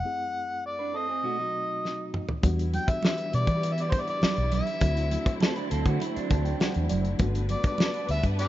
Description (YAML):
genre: lush 1970s-style soul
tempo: 101 BPM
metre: 4/4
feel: straight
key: E minor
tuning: A4 = 438 Hz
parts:
  - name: overdriven harmonica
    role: melody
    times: 0.0-8.5 s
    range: G4 to G5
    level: -30 LUFS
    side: left 1 dB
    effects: none
  - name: mellow reed electric piano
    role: accompaniment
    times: 0.0-8.5 s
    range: F#2 to A5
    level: -38 LUFS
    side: left 3 dB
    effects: fast tremolo
  - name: electric guitar through a small old amp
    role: riff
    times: 0.8-7.0 s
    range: F#3 to B4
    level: -34 LUFS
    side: right 6 dB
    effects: none
  - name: warm soul drum kit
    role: drums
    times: 1.9-8.5 s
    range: hi-hat, kick drum, snare drum, toms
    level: -27 LUFS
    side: equal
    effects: none
  - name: warm symphonic string section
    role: sustained chords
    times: 2.4-8.5 s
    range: D3 to B4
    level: -35 LUFS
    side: left 1 dB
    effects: none
  - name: vintage muted fingered electric bass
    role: bass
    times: 2.4-8.5 s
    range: F#1 to E3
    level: -27 LUFS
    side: equal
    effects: none
  - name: congas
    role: percussion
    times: 2.4-7.9 s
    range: none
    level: -34 LUFS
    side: right 5 dB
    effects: none
room: studio reverb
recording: rough home demo mix, nothing above 7.6 kHz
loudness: -24 LUFS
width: side -14 dB against mid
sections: 0.0-2.4 A section; 2.4-8.5 B section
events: break 0.0-2.4; drum fill 1.8-2.4; reed electric piano fill 6.0-7.2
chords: 0.0 F#m7b5; 1.2 B7b9; 2.4 Em7; 4.8 D9; 7.2 Gmaj7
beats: | 0.04 0.64 1.24 1.83 | 2.43 3.03 3.62 4.22 | 4.82 5.41 6.01 6.60 | 7.20 7.79 8.39